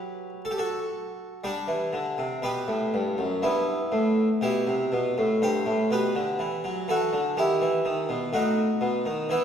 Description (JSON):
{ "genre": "classical, baroque-style suite movement for harpsichord", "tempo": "61 BPM", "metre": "4/4", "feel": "rubato", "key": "G major", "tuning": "A4 = 439 Hz", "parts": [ { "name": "harpsichord", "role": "solo", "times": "0.0-9.4 s", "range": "F#2 to C5", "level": "-24 LUFS", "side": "equal", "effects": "none" } ], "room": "wet concert hall reverb, RT60 1.8 s", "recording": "heard from further back in the room", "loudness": "-24 LUFS", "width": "side -8 dB against mid", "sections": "0.0-9.4 A section", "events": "none", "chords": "0.0 Gmaj9/F#; 1.4 G; 3.4 Em/G; 7.4 B7" }